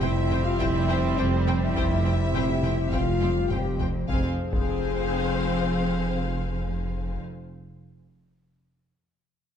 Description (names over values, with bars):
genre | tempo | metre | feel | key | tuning
cinematic, hybrid orchestral and electronic film score | 103 BPM | 4/4 | straight | F harmonic minor | A4 = 440 Hz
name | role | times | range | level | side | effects
rich symphonic violin section | melody | 0.0-7.2 s | F5 to G5 | -38 LUFS | left 4 dB | none
dark symphonic violin section | second line | 0.0-7.2 s | C5 to Ab5 | -37 LUFS | left 2 dB | none
rich symphonic viola section | accompaniment | 0.0-7.2 s | C4 to C5 | -34 LUFS | left 1 dB | none
bright trombone section | sustained chords | 0.0-7.2 s | F3 to C4 | -34 LUFS | right 3 dB | none
dark French horn section | sustained chords | 0.0-7.2 s | C4 to Ab4 | -30 LUFS | left 5 dB | none
hollow soft pad | sustained chords | 0.0-7.2 s | F3 to C5 | -34 LUFS | left 4 dB | chorus
dark studio double bass section | bass | 0.0-7.2 s | F1 | -30 LUFS | right 4 dB | none
pure sine sub bass | bass | 0.0-7.2 s | F1 | -33 LUFS | equal | none
warm studio cello section | bass | 0.0-7.2 s | F2 | -30 LUFS | right 1 dB | none
taiko ensemble | drums | 0.0-5.2 s | none | -32 LUFS | left 1 dB | none
room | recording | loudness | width
wet recital hall reverb, RT60 1.7 s | dark, warm production | -23 LUFS | side -8 dB against mid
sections
0.0-4.1 A section; 4.1-6.4 B section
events
drum fill 3.2-4.1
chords
0.0 C/F; 4.1 Fm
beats
0.01 0.60 1.18 | 1.76 2.34 2.93 3.51 | 4.09 4.67 5.26 5.84